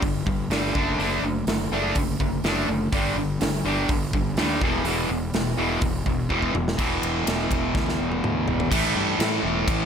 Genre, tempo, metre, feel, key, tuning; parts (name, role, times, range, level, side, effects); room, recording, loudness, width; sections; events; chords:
quiet-loud alternative rock; 124 BPM; 4/4; straight; A4 = 437 Hz
distorted electric guitar; riff; 0.0-9.9 s; E2 to D4; -24 LUFS; equal; distortion
fuzz fingered electric bass; bass; 0.0-9.9 s; E1 to A2; -29 LUFS; equal; overdrive
big rock drum kit; drums; 0.0-9.8 s; crash cymbal, hi-hat, kick drum, ride cymbal, snare drum, toms; -27 LUFS; equal
light reverb; -21 LUFS; side -7 dB against mid
0.0-6.8 A section; 6.8-8.7 B section; 8.7-9.9 C section
drum fill 6.3-6.8, 7.7-8.7
0.0 G5; 0.8 D/F#; 2.9 G5; 4.6 E5; 8.7 A5